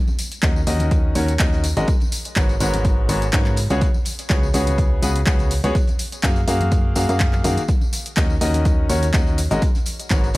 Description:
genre	piano house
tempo	124 BPM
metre	4/4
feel	swing 54% on 16ths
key	Eb minor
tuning	A4 = 439 Hz
part	tambourine and congas	percussion	0.1-10.4 s	none	-32 LUFS	left 2 dB	none
part	cloth-damped thuddy drum kit	drums	0.2-10.4 s	hi-hat, snare drum	-40 LUFS	right 2 dB	none
part	punchy analog drum machine	drums	0.2-10.4 s	handclaps, hi-hat, shaker	-27 LUFS	equal	overdrive, studio reverb
part	bright concert grand piano	riff	0.4-10.4 s	Ab2 to F5	-24 LUFS	left 1 dB	sidechain pumping, analog delay
part	solid FM bass	bass	0.4-10.4 s	Ab1 to Ab2	-21 LUFS	equal	sidechain pumping
part	electronic kick drum	drums	0.4-10.2 s	none	-20 LUFS	equal	overdrive, studio reverb
room	studio reverb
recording	dry, gritty hardware recording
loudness	-17 LUFS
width	side -20 dB against mid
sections	0.0-10.4 A section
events	none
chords	0.0 Ebm7; 1.9 Abm11; 3.6 Db7sus4; 5.8 Gbmaj9; 7.7 Ebm7; 9.6 Abm11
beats	0.43 0.91 1.40 | 1.88 2.36 2.85 3.33 | 3.82 4.30 4.78 5.27 | 5.75 6.24 6.72 7.20 | 7.69 8.17 8.65 9.14 | 9.62 10.11

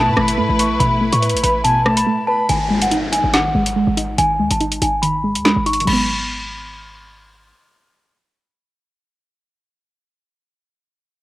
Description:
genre	hip hop, drill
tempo	142 BPM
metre	4/4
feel	half-time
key	G# phrygian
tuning	A4 = 440 Hz
part	celesta	melody	0.0-7.1 s	F#5 to C#6	-20 LUFS	equal	low-pass filter, cassette tape
part	reedy concert flute	second line	0.0-2.5 s	G#5 to C#6	-25 LUFS	left 2 dB	analog delay
part	warbly dusty pluck	accompaniment	0.0-9.4 s	B2 to B4	-20 LUFS	right 1 dB	chorus, low-pass filter
part	rich studio string section	sustained chords	0.0-2.5 s	A3 to B4	-22 LUFS	left 1 dB	none
part	short 808-style bass	bass	0.0-7.5 s	G#1 to A2	-23 LUFS	equal	none
part	drill drum kit	drums	0.2-6.0 s	crash cymbal, hi-hat, rim click, snare drum	-20 LUFS	equal	cassette tape
part	downlifter	sound effects	2.5-5.9 s	none	-28 LUFS	equal	none
room	moderate spring reverb, RT60 1.8 s, small room ambience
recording	home recording on cassette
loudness	-14 LUFS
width	side -17 dB against mid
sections	0.0-2.5 A section; 2.5-5.9 B section; 5.9-9.3 C section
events	break 2.1-2.5; filter sweep 2.5-5.9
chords	0.0 Asus2; 2.5 G#7(no3); 5.9 G#m7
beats	0.38 | 0.80 1.22 1.65 2.07 | 2.49 2.92 3.34 3.76 | 4.18 4.61 5.03 5.45 | 5.87 6.29 6.72 7.14 | 7.56 7.99 8.41 8.83

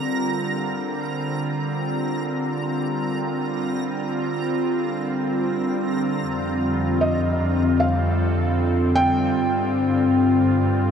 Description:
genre	ambient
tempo	75 BPM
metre	4/4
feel	straight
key	unclear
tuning	A4 = 440 Hz
part	evolving wavetable pad	sustained chords	0.0-10.9 s	D3 to Bb4	-22 LUFS	left 1 dB	chorus, built-in reverb
part	backwards swelling texture	texture	0.0-6.2 s	Bb5	-34 LUFS	right 2 dB	built-in reverb, analog chorus
part	clear studio double bass section	bass	6.2-10.9 s	F2 to G2	-24 LUFS	right 1 dB	none
part	felt-muted upright piano	melody	7.0-10.9 s	Eb5 to G5	-25 LUFS	right 1 dB	diffuse ambient delay
room	wet huge ambient reverb, RT60 9.7 s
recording	dreamy mix soaked in reverb, cassette tape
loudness	-20 LUFS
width	side -7 dB against mid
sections	0.0-6.2 A section; 6.2-10.9 B section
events	none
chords	0.0 Fsus24; 6.2 F6; 9.4 G5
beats	0.56 1.36 2.15 | 2.95 3.75 4.55 5.37 | 6.18 6.99 7.79 8.58 | 9.38 10.18

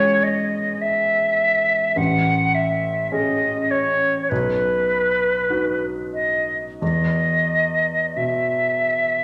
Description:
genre	classical, romantic duo for flute and grand piano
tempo	43-53 BPM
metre	4/4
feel	rubato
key	E major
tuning	A4 = 440 Hz
part	silver concert flute	melody	0.0-9.2 s	B4 to F#5	-21 LUFS	equal	none
part	clear grand piano	accompaniment	0.0-9.2 s	A1 to G#4	-27 LUFS	equal	none
room	wet recital hall reverb, RT60 1.4 s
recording	none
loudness	-20 LUFS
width	mono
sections	0.0-9.2 A section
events	none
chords	0.0 C#m/E; 2.0 Amaj7; 4.3 B; 6.8 E5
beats	0.81 | 1.98 3.13 4.31 5.51 | 6.82 8.16

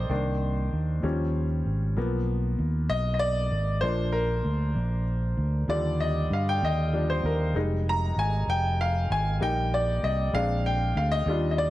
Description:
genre	slow gospel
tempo	64 BPM (dotted quarters)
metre	6/8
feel	straight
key	Eb major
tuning	A4 = 440 Hz
part	clear grand piano	accompaniment	0.0-11.7 s	D3 to Bb5	-28 LUFS	left 1 dB	none
part	fingered electric bass	bass	0.0-11.7 s	F1 to G2	-26 LUFS	equal	none
room	light reverb, small room ambience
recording	none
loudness	-24 LUFS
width	side -15 dB against mid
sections	0.0-11.7 A section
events	grand piano solo 0.0-11.7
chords	0.1 Cm7; 1.0 Eb7; 2.0 Abm6/Cb; 3.8 Bb; 5.7 Ebmaj7; 7.6 Fm7; 9.4 Eb/Bb; 10.3 Bb7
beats	| 0.10 1.03 | 1.97 2.90 | 3.83 4.76 | 5.69 6.62 | 7.55 8.48 | 9.42 10.35 | 11.28

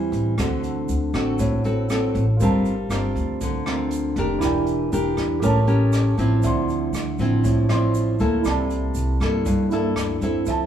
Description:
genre	bossa nova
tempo	119 BPM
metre	4/4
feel	straight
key	D minor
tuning	A4 = 441 Hz
part	nylon-string guitar	accompaniment	0.0-10.7 s	G2 to Bb4	-22 LUFS	equal	none
part	upright bass	bass	0.0-10.7 s	E1 to G2	-24 LUFS	equal	none
part	jazz brush drum kit	drums	0.1-10.6 s	hi-hat, kick drum, rim click	-30 LUFS	equal	none
part	egg shaker	percussion	0.1-10.7 s	none	-44 LUFS	right 6 dB	none
part	warm concert grand piano	accompaniment	2.4-10.7 s	E4 to C6	-28 LUFS	right 5 dB	none
room	wet large studio reverb, RT60 1.4 s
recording	band playing live in one room, tape saturation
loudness	-19 LUFS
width	side -9 dB against mid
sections	0.0-10.7 A section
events	none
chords	0.4 D7; 2.4 Gm11; 4.4 Em7b5; 5.4 A7b9; 6.4 Dm9; 8.4 C13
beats	| 0.39 0.90 1.40 1.90 | 2.41 2.91 3.41 3.92 | 4.42 4.92 5.43 5.93 | 6.43 6.94 7.44 7.95 | 8.45 8.95 9.45 9.96 | 10.46

